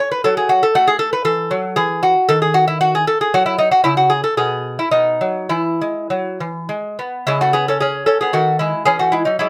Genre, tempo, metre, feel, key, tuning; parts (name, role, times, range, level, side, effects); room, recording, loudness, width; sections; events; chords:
classical, baroque-style dance for lute; 100-119 BPM; 3/4; rubato; E major; A4 = 442 Hz
lute; solo; 0.0-9.5 s; B2 to C#5; -17 LUFS; equal
light reverb; -17 LUFS; mono
0.0-7.3 A section; 7.3-9.5 A section
0.0 F#m; 2.3 D#madd11; 3.9 N.C.; 4.9 B; 5.5 E; 7.3 C#5; 8.9 C#m/E